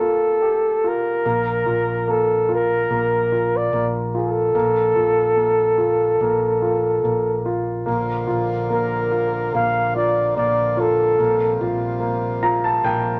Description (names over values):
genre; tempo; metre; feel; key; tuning
acoustic folk-pop ballad; 72 BPM; 4/4; straight; Bb major; A4 = 441 Hz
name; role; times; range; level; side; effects
breathy flugelhorn; melody; 0.0-11.6 s; A4 to F5; -21 LUFS; equal; none
warm grand piano; accompaniment; 0.0-13.2 s; Bb3 to Bb5; -26 LUFS; equal; none
mellow fretless electric bass; bass; 1.3-13.2 s; Bb1; -30 LUFS; equal; none
pedal harmonium; sustained chords; 7.9-13.2 s; C3 to F4; -32 LUFS; equal; none
room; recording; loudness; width
moderate club reverb, RT60 0.8 s; none; -20 LUFS; mono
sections
0.0-7.9 A section; 7.9-13.2 A section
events
none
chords
0.0 Fadd9/Bb; 1.2 Bb5; 7.9 Bb; 11.2 Fsus2/Bb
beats
0.42 | 1.25 2.07 2.90 3.72 | 4.54 5.37 6.20 7.04 | 7.87 8.71 9.54 10.37 | 11.19 12.01 12.83